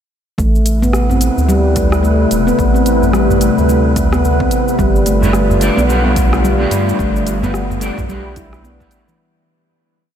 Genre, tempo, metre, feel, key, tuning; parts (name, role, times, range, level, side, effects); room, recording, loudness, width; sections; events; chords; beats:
organic downtempo; 109 BPM; 4/4; swing 60% on 16ths; A minor; A4 = 438 Hz
warbly tape-like pad; sustained chords; 0.8-9.2 s; C3 to B4; -19 LUFS; left 2 dB; chorus, built-in reverb, sidechain pumping
handpan; arpeggios; 0.4-9.2 s; E3 to E4; -16 LUFS; left 1 dB; ping-pong delay
round analog bass; bass; 0.4-8.9 s; E1 to G2; -16 LUFS; equal; sidechain pumping
electronic kick drum; drums; 0.4-8.9 s; -18 LUFS; equal; overdrive
organic electronic drum kit; drums; 0.4-9.2 s; cabasa, hi-hat, rim click; -25 LUFS; equal
wind-like tuned noise texture; texture; 0.9-9.2 s; B3 to B4; -26 LUFS; right 1 dB; built-in reverb
udu; percussion; 0.8-8.1 s; -24 LUFS; right 2 dB
electric guitar at the edge of break-up; accompaniment; 5.2-9.2 s; A3 to D5; -21 LUFS; right 2 dB; ensemble chorus, sidechain pumping, ping-pong delay
moderate huge ambient reverb, RT60 7.9 s; dreamy mix soaked in reverb; -11 LUFS; side -9 dB against mid
0.4-9.2 groove
fade-out 6.3-9.2
0.4 Amadd9; 4.8 G7
| 0.38 0.93 1.48 2.03 | 2.58 3.13 3.69 4.24 | 4.79 5.34 5.89 6.44 | 6.99 7.54 8.09 8.64